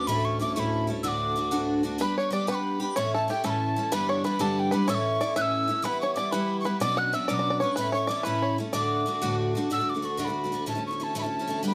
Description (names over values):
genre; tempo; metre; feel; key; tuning
celtic folk, Celtic jig; 125 BPM (dotted quarters); 6/8; straight; D major; A4 = 440 Hz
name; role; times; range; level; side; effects
mellow hollow tin whistle; melody; 0.0-11.7 s; G5 to F#6; -31 LUFS; equal; none
picked twelve-string acoustic guitar; accompaniment; 0.0-11.7 s; D2 to G4; -30 LUFS; equal; none
pedal harmonium; drone; 0.0-2.0, 9.7-11.7 s; D2; -38 LUFS; equal; none
bluegrass banjo; second line; 2.0-9.3 s; G4 to F#5; -33 LUFS; equal; none
room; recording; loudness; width
moderate small room reverb, RT60 0.6 s; none; -27 LUFS; mono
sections
0.0-2.0 A section; 2.0-9.7 A section; 9.7-11.7 B section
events
none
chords
0.1 A; 1.0 D; 2.0 G; 3.0 A; 3.9 G6; 4.9 A; 5.8 Em; 6.8 Bmadd9; 7.8 A; 8.7 D; 10.7 A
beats
| 0.08 0.56 | 1.04 1.52 | 2.00 2.48 | 2.96 3.44 | 3.92 4.40 | 4.88 5.36 | 5.84 6.32 | 6.80 7.29 | 7.77 8.25 | 8.73 9.22 | 9.70 10.19 | 10.67 11.16 | 11.64